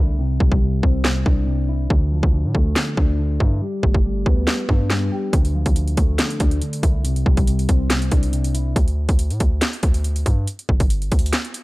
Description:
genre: hip hop, trap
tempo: 140 BPM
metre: 4/4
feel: half-time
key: D dorian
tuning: A4 = 440 Hz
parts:
  - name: mellow electric guitar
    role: accompaniment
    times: 0.0-8.8 s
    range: C3 to G4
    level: -24 LUFS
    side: left 1 dB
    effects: low-pass filter
  - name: hard-hitting 808-style bass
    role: bass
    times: 0.0-11.3 s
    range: G1 to A2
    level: -21 LUFS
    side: equal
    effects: none
  - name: trap drum kit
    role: drums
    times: 0.4-11.6 s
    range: handclaps, hi-hat, kick drum, snare drum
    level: -18 LUFS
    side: equal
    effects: none
room: digital ambience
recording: dry, gritty hardware recording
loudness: -17 LUFS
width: side -20 dB against mid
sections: 0.0-11.6 A section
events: break 0.0-5.3, 11.3-11.6; filter sweep on clean electric guitar 0.0-11.6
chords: 0.2 Cadd9; 1.9 Dmadd9; 3.6 Gadd9; 5.3 Dmadd9; 7.0 Cadd9; 8.8 D5; 10.5 G5

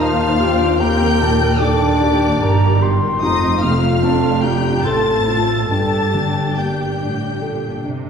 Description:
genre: cinematic, emotional film score for orchestra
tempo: 69-75 BPM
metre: 3/4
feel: rubato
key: unclear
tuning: A4 = 440 Hz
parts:
  - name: warm symphonic violin section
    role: melody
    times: 0.0-7.8 s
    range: D6 to A6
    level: -26 LUFS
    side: left 2 dB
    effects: none
  - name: silver concert flute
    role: second line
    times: 0.0-7.8 s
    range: G5 to C6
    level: -25 LUFS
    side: left 2 dB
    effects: none
  - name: warm clarinet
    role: second line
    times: 0.0-7.8 s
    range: D4 to A4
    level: -24 LUFS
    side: left 2 dB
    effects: none
  - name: warm symphonic violin section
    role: second line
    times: 0.0-7.8 s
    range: D5 to A5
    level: -25 LUFS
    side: left 2 dB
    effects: none
  - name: felt-muted upright piano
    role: accompaniment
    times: 0.0-8.1 s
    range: Eb2 to Bb4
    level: -22 LUFS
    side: left 1 dB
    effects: none
  - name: warm symphonic viola section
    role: accompaniment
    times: 0.0-8.1 s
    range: Eb3 to C5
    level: -24 LUFS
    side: right 1 dB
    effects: none
  - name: dark French horn section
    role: sustained chords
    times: 0.0-7.8 s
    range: D4 to A4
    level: -23 LUFS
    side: left 2 dB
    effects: none
  - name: rich chamber double bass section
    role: bass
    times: 0.0-8.0 s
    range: F1 to Eb2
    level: -22 LUFS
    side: right 3 dB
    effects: none
  - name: rich symphonic cello section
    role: bass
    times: 0.0-8.1 s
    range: Eb2 to C3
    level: -23 LUFS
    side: right 2 dB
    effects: none
room: wet scoring stage reverb, RT60 1.6 s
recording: heard from further back in the room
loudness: -14 LUFS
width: side -6 dB against mid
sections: 0.0-8.1 A section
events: none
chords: 0.0 Ebmaj7; 3.2 F; 5.7 Gmadd9

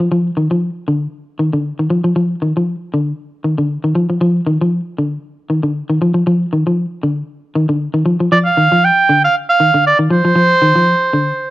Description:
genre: afrobeat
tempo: 117 BPM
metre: 4/4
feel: swing 55% on 16ths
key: unclear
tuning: A4 = 440 Hz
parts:
  - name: clean electric guitar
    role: arpeggios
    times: 0.0-11.3 s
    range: D3 to F3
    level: -14 LUFS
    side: left 1 dB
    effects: warbly pitch drift, cassette tape
  - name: clear oboe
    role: melody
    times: 8.3-11.5 s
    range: C5 to G5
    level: -11 LUFS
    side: right 2 dB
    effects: plate reverb
room: wet studio reverb, RT60 0.5 s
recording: home recording on cassette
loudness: -12 LUFS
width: side -16 dB against mid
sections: 0.0-8.3 A section; 8.3-11.5 B section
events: none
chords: 0.0 Ebmaj7sus2/D

